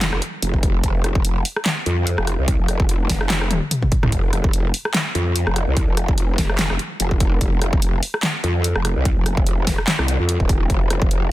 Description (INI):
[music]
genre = heavy wobble dubstep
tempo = 146 BPM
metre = 4/4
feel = swing 55% on 16ths, half-time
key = unclear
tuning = A4 = 441 Hz
[part]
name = growl bass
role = bass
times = 0.0-11.3 s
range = Eb1 to F2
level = -20 LUFS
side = equal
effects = chorus, overdrive
[part]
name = big-room dance drum kit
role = drums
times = 0.0-11.2 s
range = handclaps, hi-hat, rim click, snare drum, toms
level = -22 LUFS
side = equal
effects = none
[part]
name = electronic kick drum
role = drums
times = 0.5-11.1 s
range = none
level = -19 LUFS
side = equal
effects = none
[sound]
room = digital ambience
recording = dense, heavily limited modern master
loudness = -17 LUFS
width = side -16 dB against mid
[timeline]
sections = 0.0-11.3 A section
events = drum fill 3.5-4.1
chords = none